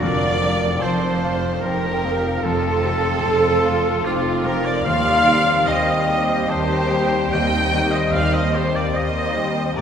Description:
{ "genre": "cinematic, emotional film score for orchestra", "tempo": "74 BPM", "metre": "3/4", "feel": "rubato", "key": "unclear", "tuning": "A4 = 440 Hz", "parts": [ { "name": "rich studio violin section", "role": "melody", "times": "0.0-9.8 s", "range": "C4 to Eb5", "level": "-29 LUFS", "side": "left 3 dB", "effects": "none" }, { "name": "clear clarinet", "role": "second line", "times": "0.0-9.8 s", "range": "F4 to G5", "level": "-29 LUFS", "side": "equal", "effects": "none" }, { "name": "clear oboe", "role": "second line", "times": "0.0-9.8 s", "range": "F4 to G5", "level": "-27 LUFS", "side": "right 1 dB", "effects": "none" }, { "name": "mellow hollow silver concert flute", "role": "second line", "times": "0.0-9.8 s", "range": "Eb5 to D6", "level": "-28 LUFS", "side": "left 1 dB", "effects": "none" }, { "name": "rich symphonic violin section", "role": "second line", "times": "0.0-9.8 s", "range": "F4 to G5", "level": "-28 LUFS", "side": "equal", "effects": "none" }, { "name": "bright concert grand piano", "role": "accompaniment", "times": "0.0-9.8 s", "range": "Eb2 to C5", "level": "-26 LUFS", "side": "left 2 dB", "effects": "none" }, { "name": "rich studio viola section", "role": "accompaniment", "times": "0.0-9.8 s", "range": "F4 to G5", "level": "-23 LUFS", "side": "right 2 dB", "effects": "none" }, { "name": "warm French horn section", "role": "sustained chords", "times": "0.0-9.8 s", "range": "F3 to C4", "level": "-29 LUFS", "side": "left 2 dB", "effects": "none" }, { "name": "concert harp", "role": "arpeggios", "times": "0.0-9.8 s", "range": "G2 to G4", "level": "-30 LUFS", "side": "left 3 dB", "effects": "none" }, { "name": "rich symphonic cello section", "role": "bass", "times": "0.0-9.8 s", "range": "Eb2 to G2", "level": "-29 LUFS", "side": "right 2 dB", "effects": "none" }, { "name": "rich symphonic double bass section", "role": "bass", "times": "0.0-9.8 s", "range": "F1 to Eb2", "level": "-26 LUFS", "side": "right 2 dB", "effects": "none" } ], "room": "wet church reverb, RT60 3.5 s", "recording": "recorded in a church or concert hall", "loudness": "-17 LUFS", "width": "side -8 dB against mid", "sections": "0.0-9.8 A section", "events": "none", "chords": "0.0 F7; 4.9 Cm/Eb" }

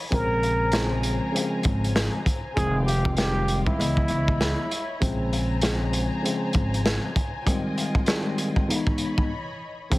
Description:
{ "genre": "hip hop, boom-bap hip-hop", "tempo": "98 BPM", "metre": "4/4", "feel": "swing 58% on 16ths", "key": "Bb minor", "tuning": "A4 = 440 Hz", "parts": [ { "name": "rich symphonic string section", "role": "sustained chords", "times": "0.0-9.9 s", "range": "Db3 to Cb6", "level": "-35 LUFS", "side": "left 2 dB", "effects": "high-pass filter, low-pass filter, plate reverb" }, { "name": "trumpet with plunger mute", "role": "melody", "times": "0.1-5.0 s", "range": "E4 to Bb4", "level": "-28 LUFS", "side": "equal", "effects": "high-pass filter, low-pass filter, digital delay, plate reverb" }, { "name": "mellow tine electric piano", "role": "accompaniment", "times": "0.1-10.0 s", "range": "Db3 to Eb5", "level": "-28 LUFS", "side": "left 1 dB", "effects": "medium stereo tremolo, cassette tape, high-pass filter, low-pass filter" }, { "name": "upright bass", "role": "bass", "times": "0.1-10.0 s", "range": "F1 to Db2", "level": "-27 LUFS", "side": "equal", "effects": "none" }, { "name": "crunchy breakbeat drum kit", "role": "drums", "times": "0.1-10.0 s", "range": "hi-hat, kick drum, snare drum", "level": "-25 LUFS", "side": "equal", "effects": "none" } ], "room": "light reverb", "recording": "heavily compressed radio sound, multiband compression, faint mains hum", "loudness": "-22 LUFS", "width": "side -19 dB against mid", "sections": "0.0-9.9 A section", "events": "break 9.3-9.9", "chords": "0.1 Bbm9; 2.6 Fm9; 3.8 Dbm9; 5.0 Bbm9; 7.5 Fm9; 8.7 Dbm9" }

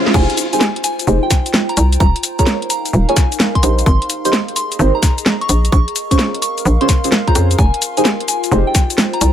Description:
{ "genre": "UK garage, two-step garage", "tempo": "129 BPM", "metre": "4/4", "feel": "swing 67% on 16ths", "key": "F minor", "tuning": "A4 = 440 Hz", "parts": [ { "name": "deep mellow chord stab", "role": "stabs", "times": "0.0-8.7 s", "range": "Db4 to Db5", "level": "-20 LUFS", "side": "right 1 dB", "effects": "chorus, phaser, ping-pong delay" }, { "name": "soft synth bell", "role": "melody", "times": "0.1-9.3 s", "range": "G5 to Db6", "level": "-22 LUFS", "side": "equal", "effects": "chorus, tape echo" }, { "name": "hollow knocking FM bass", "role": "bass", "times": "0.1-9.3 s", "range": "Eb1 to F2", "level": "-14 LUFS", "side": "equal", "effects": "none" }, { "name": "electronic kick drum", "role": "drums", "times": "0.1-8.9 s", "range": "none", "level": "-13 LUFS", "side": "equal", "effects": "none" }, { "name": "garage drum kit", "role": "drums", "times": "0.1-9.3 s", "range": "cabasa, crash cymbal, hi-hat, snare drum", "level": "-17 LUFS", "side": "equal", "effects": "none" }, { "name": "warbly tape-like pad", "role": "texture", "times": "0.7-9.3 s", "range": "Eb4 to C6", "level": "-26 LUFS", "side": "left 1 dB", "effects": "chorus, built-in reverb, phaser, sidechain pumping" } ], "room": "little or no reverb", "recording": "none", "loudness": "-12 LUFS", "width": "side -10 dB against mid", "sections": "0.1-9.3 A section", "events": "drop 0.1-9.3", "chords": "0.1 Fm7; 2.0 Eb9sus4; 3.9 Abmaj7; 5.5 Bbm9; 7.6 Fm7" }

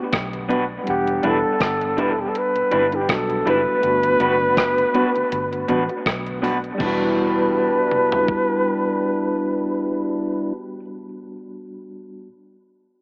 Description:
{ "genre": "lovers rock reggae", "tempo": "81 BPM", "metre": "4/4", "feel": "swing 56% on 16ths", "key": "E minor", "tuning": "A4 = 441 Hz", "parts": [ { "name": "mellow flugelhorn", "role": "melody", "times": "0.0-10.5 s", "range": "G4 to B4", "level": "-20 LUFS", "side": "equal", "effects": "dub echo" }, { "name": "mellow tonewheel organ", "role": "accompaniment", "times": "0.0-10.5 s", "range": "E2 to F#4", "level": "-27 LUFS", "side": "equal", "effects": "none" }, { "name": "overdriven tine electric piano", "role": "accompaniment", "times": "0.0-12.3 s", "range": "G3 to F#5", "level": "-27 LUFS", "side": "equal", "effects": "medium tremolo, dub echo" }, { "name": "vintage muted fingered electric bass", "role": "bass", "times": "0.1-10.8 s", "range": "E1 to B1", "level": "-32 LUFS", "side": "equal", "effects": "none" }, { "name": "clean 12-bit digital drum machine", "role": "drums", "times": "0.1-8.5 s", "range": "crash cymbal, hi-hat, kick drum, rim click, toms", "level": "-26 LUFS", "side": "equal", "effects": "overdrive" }, { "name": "electric guitar through a small old amp", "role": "stabs", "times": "0.5-10.8 s", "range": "G3 to B4", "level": "-24 LUFS", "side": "equal", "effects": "harmonic tremolo, dub echo" } ], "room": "moderate spring reverb, RT60 2.5 s", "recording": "AM radio sound", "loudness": "-17 LUFS", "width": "side -38 dB against mid", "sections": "0.0-6.8 A section; 6.8-9.8 B section", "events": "none", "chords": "0.0 Gmaj7; 0.9 Em7; 3.8 Gmaj7; 6.8 Em7" }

